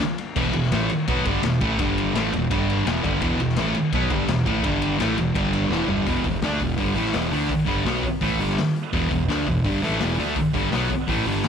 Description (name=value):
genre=garage rock duo or trio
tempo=168 BPM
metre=4/4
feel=straight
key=unclear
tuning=A4 = 441 Hz
part: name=raw garage drum kit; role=drums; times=0.0-11.5 s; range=crash cymbal, hi-hat, kick drum, ride cymbal, snare drum, toms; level=-28 LUFS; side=left 3 dB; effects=none
part: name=thick fuzz guitar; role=riff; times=0.4-11.4 s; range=E2 to D4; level=-22 LUFS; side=equal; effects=distortion
part: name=fuzz fingered electric bass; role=bass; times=0.4-11.4 s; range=E1 to D2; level=-29 LUFS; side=right 1 dB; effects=overdrive
room=light reverb, small room reverb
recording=1960s-style stereo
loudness=-20 LUFS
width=side -7 dB against mid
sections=0.0-6.1 A section; 6.1-11.5 B section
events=drum fill 5.7-6.1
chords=0.0 E5; 1.8 G5; 2.1 E5; 2.5 G5; 2.9 E5; 4.6 G5; 5.0 E5; 5.4 G5; 5.7 E5